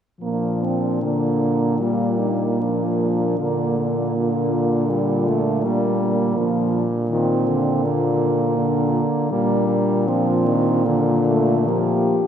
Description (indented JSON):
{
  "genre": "classical, lyrical piece for horn quartet",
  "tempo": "64-82 BPM",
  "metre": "4/4",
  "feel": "rubato",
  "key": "Bb major",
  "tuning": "A4 = 440 Hz",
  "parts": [
    { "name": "mellow French horn", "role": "melody", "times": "0.2-12.3 s", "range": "D4 to G4", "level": "-27 LUFS", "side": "left 7 dB", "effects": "none" },
    { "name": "warm French horn", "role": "second line", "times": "0.2-12.2 s", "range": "G3 to C4", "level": "-23 LUFS", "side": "right 5 dB", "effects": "none" },
    { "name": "warm French horn", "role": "accompaniment", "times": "0.2-12.2 s", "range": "D3 to G3", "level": "-23 LUFS", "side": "left 2 dB", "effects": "none" },
    { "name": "warm French horn", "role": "bass", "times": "0.2-12.2 s", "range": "Bb2", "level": "-23 LUFS", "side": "right 1 dB", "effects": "none" }
  ],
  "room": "wet cathedral reverb, RT60 5.5 s",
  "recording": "none",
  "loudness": "-18 LUFS",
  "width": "side -8 dB against mid",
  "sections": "0.2-12.3 A section",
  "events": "none",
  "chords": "0.2 Bb",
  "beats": "| 0.21 1.03 1.81 2.60 | 3.39 4.15 4.89 5.64 | 6.37 7.11 7.84 8.58 | 9.32 10.08 10.86 11.68"
}